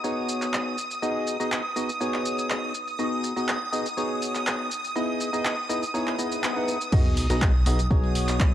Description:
piano house; 122 BPM; 4/4; straight; B major; A4 = 441 Hz
string machine, violins; sustained chords; 0.0-8.5 s; D#6; -31 LUFS; right 1 dB; ensemble chorus, sidechain pumping, cassette tape
percussive organ stab; riff; 0.0-8.5 s; B3 to F#5; -28 LUFS; equal; wide subtle chorus, sidechain pumping, cassette tape, analog delay
punchy analog drum machine; drums; 0.0-8.5 s; crash cymbal, handclaps, hi-hat, shaker; -30 LUFS; equal
swell and sub drop; sound effects; 6.1-8.5 s; -32 LUFS; equal
plucky analog bass; bass; 6.9-8.5 s; B1; -25 LUFS; equal; transformer saturation, sidechain pumping
electronic kick drum; drums; 6.9-8.5 s; -22 LUFS; equal
moderate spring reverb, RT60 2.0 s, digital ambience; home recording on cassette; -23 LUFS; side -12 dB against mid
0.0-6.9 A section; 6.9-8.5 B section
swell 6.1-6.9; drop 6.9-8.5; impact 6.9-8.5
0.0 B6; 4.7 Emaj7; 6.9 B6
0.04 0.53 | 1.02 1.51 2.01 2.50 | 2.99 3.48 3.97 4.46 | 4.96 5.45 5.94 6.43 | 6.92 7.42 7.91 8.40

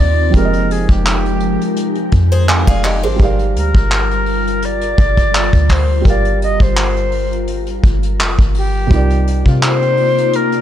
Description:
contemporary R&B; 84 BPM; 4/4; swing 54% on 16ths; A4 = 440 Hz
silver concert flute; melody; 0.0-10.6 s; F4 to Eb5; -19 LUFS; left 2 dB
felt-muted upright piano; accompaniment; 0.0-10.6 s; C3 to Ab5; -22 LUFS; right 5 dB
glassy FM pad; sustained chords; 0.0-10.6 s; C3 to D5; -21 LUFS; left 2 dB; ensemble chorus, built-in reverb
soft 808-style bass; bass; 0.0-10.6 s; F1 to C3; -16 LUFS; equal
vintage brush drum kit; drums; 0.3-10.6 s; handclaps, hi-hat, kick drum; -15 LUFS; equal; vintage 12-bit sampler grit
picked swing-style acoustic guitar; arpeggios; 2.3-3.4 s; D4 to C5; -22 LUFS; left 4 dB; ping-pong delay
studio reverb; -12 LUFS; side -11 dB against mid
0.0-10.6 A section
0.3 Fm11; 3.2 Gm7; 8.9 Cm11
| 0.34 1.05 1.77 2.48 | 3.19 3.91 4.62 5.34 | 6.05 6.77 7.48 8.20 | 8.91 9.62 10.34

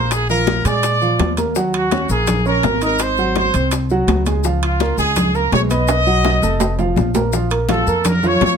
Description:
latin, salsa; 166 BPM; 4/4; straight; Bb minor; A4 = 441 Hz
bright trumpet section; melody; 0.0-8.5 s; F4 to Eb5; -19 LUFS; right 1 dB
warm grand piano; accompaniment; 0.0-8.5 s; F3 to Eb6; -21 LUFS; right 3 dB
upright bass; bass; 0.0-8.6 s; F1 to Bb2; -20 LUFS; left 1 dB
bongos; percussion; 0.1-8.6 s; -24 LUFS; left 9 dB
congas; percussion; 0.1-8.6 s; -24 LUFS; left 2 dB
maracas; percussion; 0.1-8.6 s; -31 LUFS; left 9 dB
timbales; percussion; 0.1-8.6 s; -24 LUFS; right 5 dB
light reverb; close, detailed microphones; -14 LUFS; side -7 dB against mid
0.0-7.3 A section; 7.3-8.6 B section
drum fill 5.9-7.3
0.1 Bb7; 1.6 Ebm7; 3.0 Ab7; 4.4 Db6; 5.9 B7; 6.6 F; 7.3 Bb5
| 0.11 0.47 0.83 1.20 | 1.56 1.92 2.28 2.64 | 3.00 3.36 3.72 4.08 | 4.45 4.81 5.17 5.53 | 5.89 6.25 6.61 6.97 | 7.33 7.70 8.05 8.42

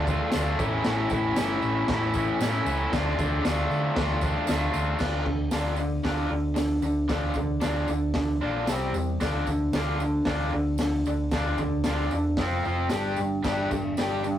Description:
garage rock duo or trio; 114 BPM; 4/4; straight; D harmonic minor, D minor from 5.0 s; A4 = 440 Hz
raw garage guitar; riff; 0.0-14.4 s; A2 to G4; -26 LUFS; equal; overdrive
fingered electric bass; bass; 0.0-14.4 s; F1 to D3; -30 LUFS; equal; overdrive
raw garage drum kit; drums; 0.1-14.1 s; crash cymbal, hi-hat, kick drum, snare drum; -31 LUFS; equal
tambourine; percussion; 0.1-14.4 s; -46 LUFS; right 6 dB
moderate studio reverb, RT60 0.6 s; rough rehearsal-room recording, warm saturation; -24 LUFS; side -11 dB against mid
0.0-5.0 A section; 5.0-14.4 B section
0.0 Dm; 0.6 A; 2.9 Dm; 8.7 C5; 9.2 Dm; 12.4 F5; 12.9 G5
0.33 | 0.85 1.37 1.89 2.41 | 2.92 3.44 3.96 4.49 | 5.01 5.53 6.05 6.57 | 7.10 7.62 8.15 8.68 | 9.20 9.73 10.26 10.79 | 11.32 11.85 12.38 12.91 | 13.45 13.98

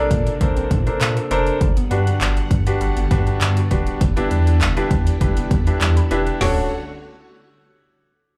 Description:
dance-pop; 100 BPM; 4/4; straight; D major; A4 = 440 Hz
warm grand piano; accompaniment; 0.0-6.7 s; D4 to D5; -25 LUFS; equal; sidechain pumping, plate reverb, slapback echo
phased string machine; sustained chords; 0.0-6.7 s; C3 to F#5; -35 LUFS; equal; ensemble chorus, phaser, sidechain pumping, plate reverb
downlifter; sound effects; 0.0-1.6 s; barely audible
hollow square pluck; arpeggios; 0.1-6.7 s; G3 to A4; -34 LUFS; equal; chorus, sidechain pumping, digital delay, plate reverb, slapback echo
warm sub bass; bass; 0.1-6.7 s; D1 to Bb2; -22 LUFS; equal; sidechain pumping
deep house drum kit; drums; 0.1-6.6 s; handclaps, hi-hat, kick drum, snare drum, toms; -23 LUFS; equal
light reverb; live gig heard through the venue's PA, club ambience; -19 LUFS; mono
0.0-6.4 A section; 6.4-8.4 B section
0.0 Bbmaj9; 1.6 Gmaj7; 4.0 Em7; 6.4 Dmaj7
0.41 1.01 | 1.61 2.21 2.81 3.41 | 4.01 4.61 5.21 5.81 | 6.41

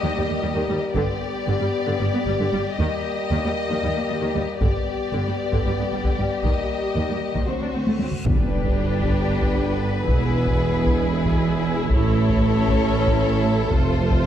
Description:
cinematic, epic orchestral film score; 230 BPM (eighths); 7/8; straight; G mixolydian from 8.3 s; A4 = 440 Hz
rich studio violin section; melody; 0.0-14.3 s; B4 to Eb5; -30 LUFS; left 4 dB
warm symphonic violin section; second line; 0.0-14.3 s; F#4 to A4; -29 LUFS; left 2 dB
rich symphonic viola section; accompaniment; 0.0-14.3 s; D3 to F4; -30 LUFS; right 1 dB
mellow French horn section; sustained chords; 0.0-14.3 s; F#3 to C#4; -29 LUFS; left 4 dB
rich symphonic cello section; bass; 0.0-14.3 s; D2 to A2; -26 LUFS; right 2 dB
rich symphonic double bass section; bass; 0.2-14.3 s; E1 to Eb2; -27 LUFS; right 2 dB
taiko ensemble; drums; 1.0-14.3 s; -24 LUFS; equal
reverse cymbal and impact; sound effects; 8.0-10.1 s; -31 LUFS; equal
warm tuba; bass; 8.3-14.3 s; E1 to A1; -28 LUFS; right 3 dB
timpani; percussion; 8.3-9.0 s; G2; -28 LUFS; equal
moderate scoring stage reverb, RT60 1.9 s; dark, warm production; -19 LUFS; side -10 dB against mid
0.0-8.3 A section; 8.3-14.3 B section
build-up 0.0-8.3; drum fill 7.9-8.3; reverse cymbal 8.0; impact 8.3-10.1
0.0 Eb; 1.0 G; 2.8 Eb; 4.6 G; 6.4 Eb; 7.5 D7; 8.3 G; 10.1 E; 11.9 A; 13.7 F
0.17 0.43 0.69 | 0.95 1.22 1.48 1.74 2.00 2.26 2.52 | 2.78 3.04 3.30 3.56 3.83 4.09 4.35 | 4.61 4.87 5.13 5.39 5.65 5.91 6.17 | 6.43 6.69 6.96 7.22 7.48 7.74 8.00 | 8.26 8.52 8.78 9.04 9.30 9.56 9.82 | 10.08 10.34 10.60 10.86 11.12 11.38 11.64 | 11.90 12.17 12.43 12.69 12.95 13.21 13.47 | 13.73 13.99 14.25

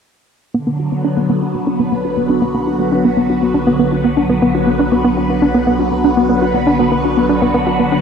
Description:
ambient, sequencer-driven space music; 120 BPM; 4/4; straight; B minor; A4 = 438 Hz
phased string machine; sustained chords; 0.5-8.0 s; D3 to B4; -16 LUFS; equal; ensemble chorus, phaser
hollow square pluck; riff; 0.5-8.0 s; B3 to F#4; -15 LUFS; equal; chorus, ping-pong delay
round analog bass; bass; 0.5-8.0 s; B1; -28 LUFS; equal
moderate plate reverb, RT60 3.3 s; dark, warm production; -12 LUFS; side -7 dB against mid
0.5-8.0 A section
fade-in on analog synth bass 0.5-8.0; filter sweep on synth arpeggio sound 0.5-8.0; filter sweep on string machine 0.5-8.0
0.5 Bm
| 0.55 1.04 1.54 2.04 | 2.54 3.04 3.54 4.04 | 4.54 5.04 5.54 6.04 | 6.54 7.04 7.54

